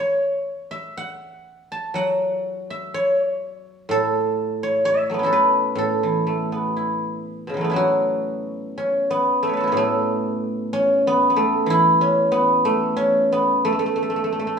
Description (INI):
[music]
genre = chinese traditional, Chinese solo plucked strings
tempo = 61 BPM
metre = 2/4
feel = rubato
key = A gong mode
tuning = A4 = 440 Hz
[part]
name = guzheng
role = solo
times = 0.0-14.6 s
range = A2 to A5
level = -18 LUFS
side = equal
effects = none
[sound]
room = wet stone room reverb, RT60 1.3 s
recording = band playing live in one room, small room ambience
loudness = -18 LUFS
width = side -6 dB against mid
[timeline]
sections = 0.0-7.8 A section; 7.8-14.6 B section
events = none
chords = none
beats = 0.96 | 1.95 2.93 | 3.89 4.83 | 5.78 6.77 | 7.77 8.77 | 9.75 10.73 | 11.69 12.65 | 13.63